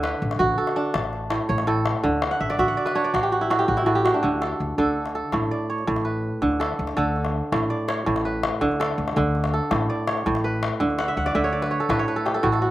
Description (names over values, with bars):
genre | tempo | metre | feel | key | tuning
west african traditional, West African string and xylophone music | 110 BPM (dotted quarters) | 12/8 | straight | D major | A4 = 439 Hz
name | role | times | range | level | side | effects
kora | arpeggios | 0.0-12.7 s | A2 to A5 | -22 LUFS | right 1 dB | none
upright bass | bass | 0.0-12.7 s | A1 to D2 | -28 LUFS | left 1 dB | none
calabash | percussion | 0.0-12.6 s | none | -30 LUFS | left 5 dB | none
room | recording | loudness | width
little or no reverb | recorded outdoors, with no room sound | -21 LUFS | side -15 dB against mid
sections
0.0-4.2 A section; 4.2-12.7 B section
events
kora fill 2.3-4.2, 11.0-12.7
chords
0.0 D; 0.9 A; 2.0 D; 3.1 Em11/A; 4.2 D5; 5.3 A; 6.4 D5; 7.5 A; 8.6 D5; 9.7 A; 10.8 Dmaj13; 11.9 A13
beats
0.40 0.95 1.50 | 2.04 2.59 3.14 3.69 | 4.24 4.78 5.33 5.88 | 6.43 6.98 7.53 8.07 | 8.62 9.17 9.71 10.26 | 10.81 11.35 11.90 12.44